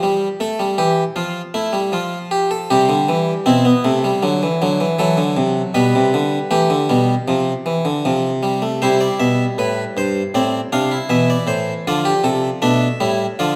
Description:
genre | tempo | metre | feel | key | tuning
classical, baroque-style 4-part fugue for harpsichord | 78 BPM | 4/4 | straight | unclear | A4 = 440 Hz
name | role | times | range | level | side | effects
harpsichord | solo | 0.0-13.6 s | G2 to F5 | -18 LUFS | equal | none
room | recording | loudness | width
moderate recital hall reverb, RT60 1.3 s | none | -18 LUFS | mono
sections
0.0-8.8 A section; 8.8-13.6 B section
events
none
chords
0.0 Emadd11; 1.2 F; 2.7 C; 4.2 D7; 5.7 G/B; 7.3 C5; 8.8 C; 10.3 Am

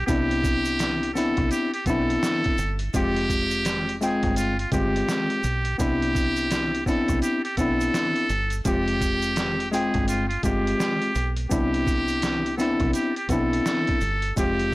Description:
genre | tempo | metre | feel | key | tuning
hip hop, boom-bap hip-hop | 84 BPM | 4/4 | swing 62% on 16ths | C major | A4 = 440 Hz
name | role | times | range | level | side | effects
trumpet with metal mute | melody | 0.0-14.7 s | F4 to A4 | -27 LUFS | right 1 dB | high-pass filter, low-pass filter
deep dub fingered electric bass | bass | 0.0-14.7 s | F1 to C2 | -29 LUFS | right 1 dB | transformer saturation
tine electric piano | accompaniment | 0.1-14.7 s | Ab3 to G5 | -25 LUFS | left 2 dB | cassette tape, high-pass filter, low-pass filter, plate reverb
trip hop sampler-style drum kit | drums | 0.1-14.7 s | hi-hat, kick drum, snare drum | -29 LUFS | right 1 dB | none
tube shaker | percussion | 0.1-14.6 s | none | -40 LUFS | right 6 dB | none
room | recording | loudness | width
light reverb | blown-out, overdriven recording, overdrive | -21 LUFS | side -19 dB against mid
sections
0.0-14.7 A section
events
none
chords
0.1 Cmaj9; 2.9 Fmadd9; 5.8 Cmaj9; 8.7 Fmadd9; 11.5 Cmaj9

